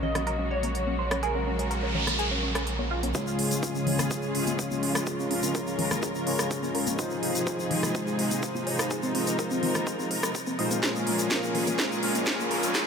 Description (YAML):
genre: progressive house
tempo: 125 BPM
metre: 4/4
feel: straight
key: unclear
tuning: A4 = 441 Hz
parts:
  - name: expressive synth lead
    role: melody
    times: 0.0-3.1 s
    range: Bb4 to Eb5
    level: -36 LUFS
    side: equal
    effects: analog chorus, sidechain pumping, dub echo
  - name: soft synth bell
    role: second line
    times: 0.0-3.1 s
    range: Bb4 to Eb5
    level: -39 LUFS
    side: equal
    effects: none
  - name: muted studio string section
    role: sustained chords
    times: 0.0-12.9 s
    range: Bb2 to Bb4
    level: -33 LUFS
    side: right 1 dB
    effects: sidechain pumping
  - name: tight sequenced synth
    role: arpeggios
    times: 0.0-12.8 s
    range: Ab3 to Eb5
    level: -34 LUFS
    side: equal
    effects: chorus, phaser, sidechain pumping, dub echo
  - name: round analog bass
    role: bass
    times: 0.0-3.1 s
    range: Bb1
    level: -32 LUFS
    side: right 1 dB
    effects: sidechain pumping
  - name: congas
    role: percussion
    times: 0.0-12.5 s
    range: none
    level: -36 LUFS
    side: left 5 dB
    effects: sidechain pumping on perc
  - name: house drum kit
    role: drums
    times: 0.2-12.8 s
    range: hi-hat, rim click, snare drum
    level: -32 LUFS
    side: right 1 dB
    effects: none
  - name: noise sweep and riser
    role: sound effects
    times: 1.6-3.1, 12.0-12.9 s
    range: none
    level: -33 LUFS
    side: right 2 dB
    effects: none
  - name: soft supersaw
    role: stabs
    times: 3.1-12.9 s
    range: Bb2 to Db5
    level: -29 LUFS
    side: left 2 dB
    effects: sidechain pumping, low-pass filter, dub echo
  - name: electronic kick drum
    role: drums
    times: 3.1-12.8 s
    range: none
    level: -34 LUFS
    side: right 1 dB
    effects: high-pass filter on kick
  - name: egg shaker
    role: percussion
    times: 3.1-12.8 s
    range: none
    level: -37 LUFS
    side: left 4 dB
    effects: none
room: moderate huge ambient reverb, RT60 5.0 s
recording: high-pass filter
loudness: -25 LUFS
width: side -6 dB against mid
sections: 0.0-3.1 A section; 3.1-12.9 B section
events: noise sweep 1.6-3.1; build-up 3.1-12.9; filter sweep on supersaw synth 3.1-12.9; drum fill 10.8-12.9; riser 12.0-12.9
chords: 0.0 Gbadd9/Bb; 3.1 Db; 7.0 Fm7; 10.8 Bbm7